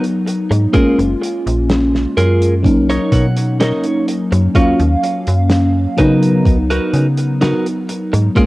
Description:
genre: vaporwave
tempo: 63 BPM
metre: 4/4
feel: straight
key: unclear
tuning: A4 = 440 Hz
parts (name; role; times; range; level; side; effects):
- FM electric piano with soft pad layer; accompaniment; 0.0-8.5 s; F#3 to E#5; -16 LUFS; equal; analog chorus, cassette tape, analog delay
- clean electric guitar; riff; 0.0-8.5 s; D#4 to F#5; -20 LUFS; right 1 dB; wide subtle chorus, cassette tape, analog delay
- warm soul drum kit; drums; 0.0-8.5 s; hi-hat, snare drum; -23 LUFS; equal; cassette tape
- slap-like FM bass; bass; 0.5-8.5 s; F#1 to C#3; -15 LUFS; equal; none
- electronic kick drum; drums; 0.7-8.5 s; none; -14 LUFS; equal; cassette tape
room: light reverb, small room ambience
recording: home recording on cassette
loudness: -12 LUFS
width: side -19 dB against mid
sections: 0.0-8.5 A section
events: clean electric guitar fill 2.7-4.6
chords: 0.0 C#9sus4 (rootless); 0.7 F#maj9; 2.7 Bmaj9; 4.6 D#m9; 6.0 C#13sus4

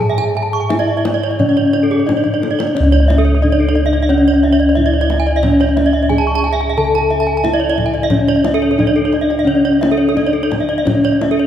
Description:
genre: Balinese gamelan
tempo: 89 BPM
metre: 4/4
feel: straight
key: C# pelog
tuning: A4 = 445 Hz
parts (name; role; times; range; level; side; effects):
- gamelan-type bronze metallophone; melody; 0.0-11.5 s; C#4 to A4-20c; -15 LUFS; left 1 dB; none
- gamelan-type bronze metallophone; arpeggios; 0.0-11.5 s; A4-20c to C#6; -20 LUFS; left 1 dB; none
- gamelan-type bossed gongs; bass; 0.0-11.5 s; C#2 to G#4-30c; -18 LUFS; equal; none
- gamelan-type bronze metallophone; arpeggios; 0.1-11.4 s; G#4-30c to C#6; -21 LUFS; right 6 dB; none
- kendang; percussion; 0.2-11.4 s; none; -23 LUFS; left 2 dB; none
room: wet church reverb, RT60 3.5 s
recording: recorded in a church or concert hall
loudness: -12 LUFS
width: side -10 dB against mid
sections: 0.0-2.8 A section; 2.8-11.5 B section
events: drum fill 2.2-2.8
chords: none

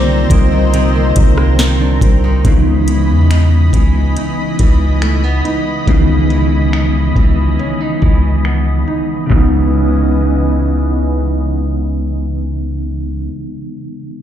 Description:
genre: contemporary R&B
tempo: 70 BPM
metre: 4/4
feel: straight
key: C# minor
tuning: A4 = 440 Hz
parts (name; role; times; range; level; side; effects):
- warm velvety synth lead; melody; 0.0-2.0 s; D5 to Eb5; -22 LUFS; left 4 dB; chorus, phaser, digital delay
- bell-like tine electric piano; accompaniment; 0.0-14.2 s; C#3 to E#4; -18 LUFS; left 1 dB; medium stereo tremolo
- lush unison pad; sustained chords; 0.0-13.3 s; C#3 to B5; -22 LUFS; left 1 dB; chorus
- nylon-string guitar; arpeggios; 0.0-13.4 s; C3 to D#4; -22 LUFS; right 4 dB; digital delay
- long sustained 808-style bass; bass; 0.0-13.3 s; C2 to E2; -13 LUFS; equal; none
- mallet-like synth pluck; texture; 0.0-1.7 s; none; barely audible; none; none
- smooth R&B drum kit; drums; 0.3-9.5 s; finger snaps, handclaps, hi-hat, kick drum, rim click, snare drum; -14 LUFS; equal; none
room: little or no reverb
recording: played on a big sound system in a bare room, stone room reverb, low-pass filter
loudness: -11 LUFS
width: side -10 dB against mid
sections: 0.0-2.4 A section; 2.4-9.3 B section; 9.3-12.7 C section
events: none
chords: 0.0 Cm9; 2.4 C#m9

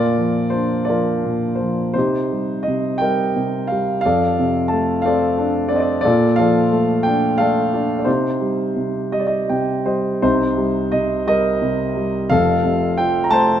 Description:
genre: classical, lyrical solo piano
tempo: 54-61 BPM (dotted quarters)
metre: 6/8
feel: rubato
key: C dorian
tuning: A4 = 440 Hz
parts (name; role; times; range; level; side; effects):
- warm concert grand piano; solo; 0.0-13.6 s; F1 to Bb5; -16 LUFS; equal; none
room: moderate scoring stage reverb, RT60 1.7 s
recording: none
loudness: -16 LUFS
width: side -10 dB against mid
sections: 0.0-10.2 A section; 10.2-13.6 A section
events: grand piano fill 9.1-10.2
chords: 0.0 Bb; 1.9 Cm7; 4.0 F6; 6.0 Bbmaj7; 8.1 Cm; 10.2 Cm7; 12.3 F

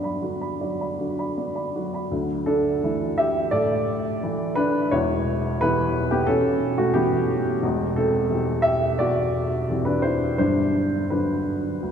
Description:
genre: neoclassical minimalist piano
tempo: 87 BPM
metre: 4/4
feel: uneven beats, rubato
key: D major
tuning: A4 = 440 Hz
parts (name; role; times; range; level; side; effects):
- dark upright piano; solo; 0.0-11.9 s; E1 to B5; -21 LUFS; equal; none
room: wet cathedral reverb, RT60 4.2 s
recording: recorded in a church or concert hall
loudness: -21 LUFS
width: side -8 dB against mid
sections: 0.0-2.1 A section; 2.1-11.9 B section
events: none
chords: 0.0 Gmaj7; 2.1 Dsus2; 4.9 Em; 7.6 C/E; 10.4 Gmaj7

